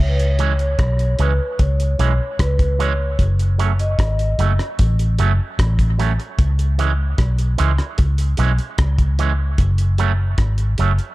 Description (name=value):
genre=dub reggae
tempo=75 BPM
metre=4/4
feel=straight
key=C# minor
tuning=A4 = 440 Hz
part: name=vibraphone with soft mallets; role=melody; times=0.0-4.4 s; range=B4 to D#5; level=-26 LUFS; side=equal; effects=dub echo
part: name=vintage muted fingered electric bass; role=bass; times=0.0-11.0 s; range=F#1 to C#2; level=-17 LUFS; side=equal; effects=none
part: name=cloth-damped thuddy drum kit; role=drums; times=0.2-11.1 s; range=hi-hat, kick drum, rim click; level=-21 LUFS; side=equal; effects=none
part: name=electric guitar with an envelope filter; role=accompaniment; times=0.4-10.9 s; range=E3 to C#4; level=-26 LUFS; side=right 9 dB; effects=dub echo
room=studio reverb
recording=dark, warm production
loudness=-16 LUFS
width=side -18 dB against mid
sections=0.0-11.1 A section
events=none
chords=0.0 C#m; 3.2 F#m; 6.4 C#m; 9.6 F#m